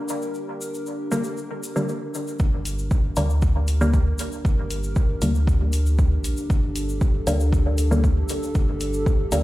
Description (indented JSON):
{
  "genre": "dub techno",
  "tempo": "117 BPM",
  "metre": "4/4",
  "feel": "straight",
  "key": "G minor",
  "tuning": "A4 = 440 Hz",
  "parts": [
    { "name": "dark analog pad", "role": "sustained chords", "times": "0.0-9.4 s", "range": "D4 to Bb4", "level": "-31 LUFS", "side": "equal", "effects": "chorus, sidechain pumping" },
    { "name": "tube shaker", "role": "percussion", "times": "0.1-9.4 s", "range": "none", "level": "-37 LUFS", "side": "left 3 dB", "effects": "none" },
    { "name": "filtered dub chord stab", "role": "stabs", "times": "1.1-9.4 s", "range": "D3 to Bb3", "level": "-27 LUFS", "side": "left 1 dB", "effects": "chorus, phaser, dub echo" },
    { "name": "warm sub bass", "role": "bass", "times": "2.4-9.4 s", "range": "G1 to D2", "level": "-23 LUFS", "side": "equal", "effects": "sidechain pumping" },
    { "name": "electronic kick drum", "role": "drums", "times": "2.4-9.2 s", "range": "none", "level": "-20 LUFS", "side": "equal", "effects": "overdrive" },
    { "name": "electronic hi-hat", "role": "drums", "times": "2.7-9.4 s", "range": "none", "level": "-34 LUFS", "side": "left 2 dB", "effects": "none" }
  ],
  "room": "light reverb",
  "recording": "played on a big sound system in a bare room, large studio reverb",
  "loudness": "-20 LUFS",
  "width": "side -16 dB against mid",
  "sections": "0.0-2.4 A section; 2.4-9.4 B section",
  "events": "none",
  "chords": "0.0 Gm"
}